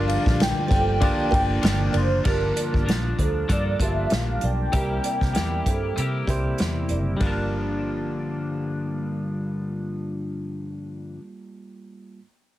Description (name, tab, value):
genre	indie pop, bedroom pop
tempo	97 BPM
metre	4/4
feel	swing 55% on 16ths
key	G dorian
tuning	A4 = 440 Hz
part	warm velvety synth lead	melody	0.0-6.6 s	Bb4 to G5	-27 LUFS	equal	ensemble chorus, slapback echo
part	kalimba	second line	0.0-9.0 s	G4 to D5	-33 LUFS	right 6 dB	ensemble chorus, slapback echo
part	barky tine electric piano	accompaniment	0.0-12.2 s	G3 to A5	-32 LUFS	right 3 dB	cassette tape
part	twelve-string electric guitar	accompaniment	0.0-11.2 s	G2 to A4	-29 LUFS	left 2 dB	lush chorus, warbly pitch drift
part	vintage muted fingered electric bass	bass	0.0-11.1 s	F#1 to C3	-26 LUFS	equal	none
part	unplugged drum kit	drums	0.1-7.4 s	crash cymbal, hi-hat, kick drum, ride cymbal, snare drum	-25 LUFS	equal	none
room	light reverb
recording	heavily compressed radio sound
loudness	-21 LUFS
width	side -14 dB against mid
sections	0.0-2.3 A section; 2.3-7.2 B section; 7.2-9.7 C section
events	none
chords	0.0 Gm7; 2.3 Gm9; 4.7 C7; 7.2 Gm9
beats	0.40 1.01 1.63 | 2.25 2.87 3.49 4.11 | 4.73 5.35 5.97 6.59 | 7.21 7.83 8.45 9.07